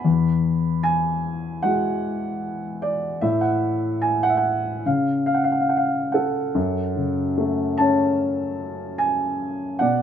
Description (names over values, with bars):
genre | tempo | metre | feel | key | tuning
classical, lyrical solo piano | 74 BPM | 4/4 | rubato | F# minor from 6.6 s | A4 = 440 Hz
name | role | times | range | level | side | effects
dark grand piano | solo | 0.0-10.0 s | E2 to B5 | -20 LUFS | equal | none
room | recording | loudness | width
light reverb | none | -20 LUFS | side -8 dB against mid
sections
0.0-6.6 A section; 6.6-10.0 B section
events
none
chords
0.1 Eadd9; 3.2 N.C.; 4.9 C#; 6.6 F#m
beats
| 0.05 0.85 1.64 2.43 | 3.22 4.03 4.86 5.71 | 6.56 7.39 8.20 9.00 | 9.81